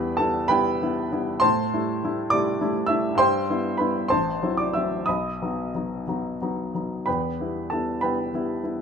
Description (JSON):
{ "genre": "classical, romantic character piece for solo piano", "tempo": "58-70 BPM (dotted quarters)", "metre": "6/8", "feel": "rubato", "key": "E minor", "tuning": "A4 = 442 Hz", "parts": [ { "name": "warm baby grand piano", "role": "solo", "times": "0.0-8.8 s", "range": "A1 to E6", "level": "-22 LUFS", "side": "equal", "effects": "none" } ], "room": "light reverb", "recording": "none", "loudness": "-22 LUFS", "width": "side -6 dB against mid", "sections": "0.0-8.8 A section", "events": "none", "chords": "0.0 Em; 1.4 Am7; 3.2 Em/G; 4.1 F#m7b5/A; 5.1 B; 7.1 Em", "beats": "0.51 | 1.43 2.33 | 3.20 4.10 | 5.05 6.06 | 7.07 8.02" }